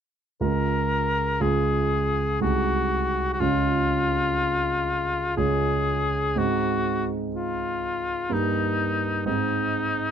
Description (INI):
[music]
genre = classical, romantic duo for oboe and grand piano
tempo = 61 BPM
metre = 3/4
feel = rubato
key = Db major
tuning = A4 = 443 Hz
[part]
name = warm oboe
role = melody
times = 0.4-10.1 s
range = Eb4 to Bb4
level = -25 LUFS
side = left 3 dB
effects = none
[part]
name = clear concert grand piano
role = accompaniment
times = 0.4-10.1 s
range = C2 to Ab4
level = -25 LUFS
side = right 2 dB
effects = none
[sound]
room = light reverb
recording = dark, warm production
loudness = -22 LUFS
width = side -8 dB against mid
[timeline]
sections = 0.4-10.1 A section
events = none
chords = 0.4 Db; 2.4 Ab/C; 3.4 Db; 6.4 Ab; 8.3 Eb/G; 9.3 Ab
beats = | 0.41 1.41 2.42 | 3.39 4.38 5.38 | 6.37 7.34 8.31 | 9.27